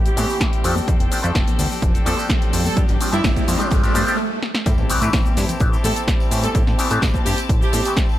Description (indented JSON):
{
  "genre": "filtered disco house",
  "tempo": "127 BPM",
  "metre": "4/4",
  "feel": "straight",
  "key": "A minor",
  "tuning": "A4 = 439 Hz",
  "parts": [
    { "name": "dark studio string section", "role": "sustained chords", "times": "0.0-8.2 s", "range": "C4 to A5", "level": "-31 LUFS", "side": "right 1 dB", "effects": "sidechain pumping, low-pass filter" },
    { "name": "direct-recorded clean electric guitar", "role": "riff", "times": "0.0-8.2 s", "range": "F3 to A4", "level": "-30 LUFS", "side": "left 5 dB", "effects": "sidechain pumping, low-pass filter" },
    { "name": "plucky analog bass", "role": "bass", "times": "0.0-7.8 s", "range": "F1 to A2", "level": "-22 LUFS", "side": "equal", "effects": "sidechain pumping, low-pass filter" },
    { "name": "riser, swell and impact", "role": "sound effects", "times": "1.1-6.6 s", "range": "none", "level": "-29 LUFS", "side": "right 1 dB", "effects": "none" },
    { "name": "clear horn section", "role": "melody", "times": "0.1-8.0 s", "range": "E4 to A4", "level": "-27 LUFS", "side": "right 2 dB", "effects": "sidechain pumping, low-pass filter" },
    { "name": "house drum kit", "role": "drums", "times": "0.1-8.1 s", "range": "hi-hat, shaker, snare drum", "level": "-25 LUFS", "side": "equal", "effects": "sidechain pumping on hats, sidechain pumping on perc" },
    { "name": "tambourine and congas", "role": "percussion", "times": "0.1-8.2 s", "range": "none", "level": "-32 LUFS", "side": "left 3 dB", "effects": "sidechain pumping on perc, low-pass filter on perc" },
    { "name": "auto-wah clav", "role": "accompaniment", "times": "0.2-8.0 s", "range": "E3 to B4", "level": "-25 LUFS", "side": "left 1 dB", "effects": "phaser, vintage 12-bit sampler grit, sidechain pumping, low-pass filter" },
    { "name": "electronic kick drum", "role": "drums", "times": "0.4-8.1 s", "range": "none", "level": "-19 LUFS", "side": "equal", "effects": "none" }
  ],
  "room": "digital ambience",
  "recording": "none",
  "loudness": "-16 LUFS",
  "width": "side -14 dB against mid",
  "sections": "0.0-4.7 A section; 4.7-8.2 B section",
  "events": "build-up 0.0-4.7; riser 1.1-4.2; swell 3.7-4.7; stop 4.2-4.7; drum fill 4.4; drop 4.7-8.2; impact 4.7-6.6",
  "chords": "0.0 Am7; 0.6 F69; 2.8 G7sus4; 4.7 Am7"
}